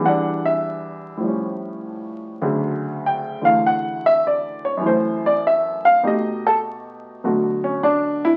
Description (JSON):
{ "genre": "solo jazz", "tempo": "100 BPM", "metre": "4/4", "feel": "swing 68% on 8ths", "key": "unclear", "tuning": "A4 = 440 Hz", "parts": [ { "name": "warm upright piano", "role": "solo", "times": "0.0-8.4 s", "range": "D2 to G5", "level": "-20 LUFS", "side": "equal", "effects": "none" } ], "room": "wet studio reverb, RT60 0.7 s", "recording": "very old 78 rpm record, vinyl crackle", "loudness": "-20 LUFS", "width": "mono", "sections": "0.0-7.2 A section; 7.2-8.4 B section", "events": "upright piano solo 0.0-7.2", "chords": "0.0 Em7; 1.2 A7alt; 2.4 Dmaj7; 4.8 F#m7b5; 6.0 B7b13; 7.2 Bm7" }